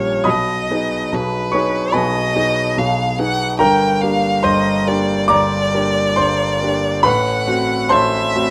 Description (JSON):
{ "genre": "classical, romantic duo for violin and grand piano", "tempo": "67-74 BPM", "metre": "4/4", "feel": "rubato", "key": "G minor from 3.6 s", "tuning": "A4 = 441 Hz", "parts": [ { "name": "rich violin", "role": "melody", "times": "0.0-8.5 s", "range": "Cb5 to G5", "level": "-22 LUFS", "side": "equal", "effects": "none" }, { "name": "clear grand piano", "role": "accompaniment", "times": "0.0-8.5 s", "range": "G1 to G6", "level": "-19 LUFS", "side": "equal", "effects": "none" } ], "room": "light reverb", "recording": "close, detailed microphones", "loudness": "-17 LUFS", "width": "mono", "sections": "0.0-8.5 A section", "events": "none", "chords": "0.3 Abm/Cb; 3.6 Gm; 7.1 F#dim/A" }